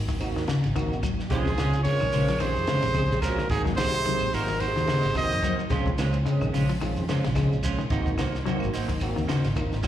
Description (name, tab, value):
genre	afrobeat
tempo	109 BPM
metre	4/4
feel	swing 56% on 16ths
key	unclear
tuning	A4 = 443 Hz
part	fingered electric bass	bass	0.0-9.9 s	Ab1 to F2	-28 LUFS	equal	none
part	semi-hollow electric guitar	arpeggios	0.1-9.9 s	C3 to Gb3	-29 LUFS	left 3 dB	none
part	compact cocktail drum kit	drums	0.1-9.9 s	hi-hat, kick drum, ride cymbal, snare drum	-32 LUFS	equal	none
part	shekere	percussion	0.1-9.9 s	none	-40 LUFS	right 1 dB	slapback echo
part	overdriven tine electric piano	accompaniment	0.2-9.8 s	Ab3 to Ab4	-34 LUFS	right 1 dB	ensemble chorus, slapback echo
part	claves	percussion	0.2-9.9 s	none	-44 LUFS	equal	none
part	clear trumpet	melody	1.3-5.6 s	Ab4 to Eb5	-27 LUFS	right 1 dB	slapback echo
part	breathy bright pan flute	second line	1.3-5.6 s	Eb4 to C5	-35 LUFS	right 4 dB	slapback echo
part	clear bass trombone	second line	1.3-5.6 s	Ab2 to Eb3	-36 LUFS	left 1 dB	slapback echo
part	clean electric guitar	stabs	1.3-9.9 s	Ab3 to C5	-32 LUFS	right 5 dB	wide subtle chorus, slapback echo
room	light reverb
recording	live gig heard through the venue's PA, recital hall reverb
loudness	-23 LUFS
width	side -11 dB against mid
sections	0.0-9.9 A section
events	none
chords	0.0 Ab9; 1.3 Bbm9; 3.5 Ab9; 5.7 Bbm9; 7.9 Ab9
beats	0.20 0.75 | 1.30 1.85 2.40 2.95 | 3.50 4.05 4.60 5.15 | 5.70 6.25 6.80 7.36 | 7.91 8.46 9.01 9.56